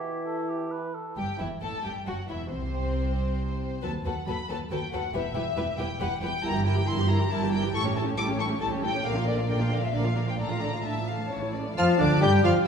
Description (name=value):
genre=quick classical-period movement for symphony orchestra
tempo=136 BPM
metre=3/4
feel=rubato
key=E minor, D minor from 6.4 s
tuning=A4 = 440 Hz
part: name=dark cor anglais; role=second line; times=0.0-1.2, 11.8-12.6 s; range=D4 to B4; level=-34 LUFS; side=right 2 dB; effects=none
part: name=mellow hollow silver concert flute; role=second line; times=0.0-0.7, 11.8-12.7 s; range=E5 to A5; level=-33 LUFS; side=left 3 dB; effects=none
part: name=warm clarinet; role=second line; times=0.0-0.9, 11.8-12.5 s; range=D4 to G4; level=-29 LUFS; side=left 3 dB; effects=none
part: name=mellow bassoon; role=accompaniment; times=0.0-0.9, 11.8-12.5 s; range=D3 to G3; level=-30 LUFS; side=right 1 dB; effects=none
part: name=dark studio violin section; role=melody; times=1.2-12.5 s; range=C5 to G6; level=-33 LUFS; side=left 3 dB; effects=none
part: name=warm studio violin section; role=second line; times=1.2-12.5 s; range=C4 to G5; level=-33 LUFS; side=left 3 dB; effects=none
part: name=dark chamber viola section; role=accompaniment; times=1.2-12.7 s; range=C3 to G4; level=-33 LUFS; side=right 2 dB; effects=none
part: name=dark studio double bass section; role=bass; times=1.2-12.5 s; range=E1 to G2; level=-31 LUFS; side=right 1 dB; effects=none
part: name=warm studio cello section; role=bass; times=1.2-12.7 s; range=C2 to G3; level=-31 LUFS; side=right 2 dB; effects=none
part: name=mellow French horn section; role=sustained chords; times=11.8-12.6 s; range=D3 to G3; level=-29 LUFS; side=left 3 dB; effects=none
part: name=dark trumpet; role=stabs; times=11.8-12.7 s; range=D5 to G5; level=-31 LUFS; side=equal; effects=none
room=wet recital hall reverb, RT60 1.9 s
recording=heard from further back in the room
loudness=-25 LUFS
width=side -6 dB against mid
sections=0.0-1.2 A section; 1.2-11.8 A section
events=none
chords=0.0 Em; 2.5 N.C.; 3.8 B7/D#; 5.1 Em; 6.4 Edim/G; 7.7 A7; 9.1 Bb; 10.4 Dm/A; 11.3 A; 11.8 Dm